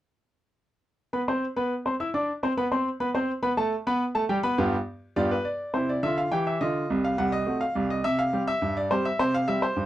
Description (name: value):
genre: ragtime piano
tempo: 104 BPM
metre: 2/4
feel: straight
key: C major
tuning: A4 = 440 Hz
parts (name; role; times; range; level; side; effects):
- bright grand piano; solo; 1.1-9.9 s; C2 to E6; -24 LUFS; equal; none
room: little or no reverb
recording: dry, close 1970s-style studio recording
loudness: -24 LUFS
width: side -13 dB against mid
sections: 1.1-5.7 A section; 5.7-9.9 B section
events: none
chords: 1.1 N.C.; 3.4 G7; 5.7 C; 6.9 Cdim7; 8.0 C5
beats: | 1.13 1.71 | 2.29 2.86 | 3.44 4.01 | 4.58 5.16 | 5.75 6.32 | 6.90 7.47 | 8.04 8.62 | 9.19 9.77